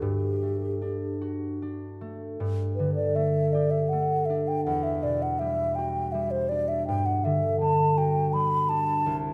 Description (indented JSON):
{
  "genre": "classical, impressionist duo for flute and harp",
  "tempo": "54 BPM (dotted quarters)",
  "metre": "6/8",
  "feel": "rubato",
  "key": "G major",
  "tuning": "A4 = 445 Hz",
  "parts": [
    { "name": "mellow hollow concert flute", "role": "melody", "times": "0.0-9.2 s", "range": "G4 to B5", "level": "-29 LUFS", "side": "equal", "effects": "none" },
    { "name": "concert harp", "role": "accompaniment", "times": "0.0-9.3 s", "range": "C2 to B4", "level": "-29 LUFS", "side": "equal", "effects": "none" }
  ],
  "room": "moderate concert hall reverb, RT60 2.0 s",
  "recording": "none",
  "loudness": "-26 LUFS",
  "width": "mono",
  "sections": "0.0-2.4 A section; 2.4-9.3 A section",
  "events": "none",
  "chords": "0.0 Gmaj9; 2.4 Gadd9; 4.7 Em9; 6.9 G5"
}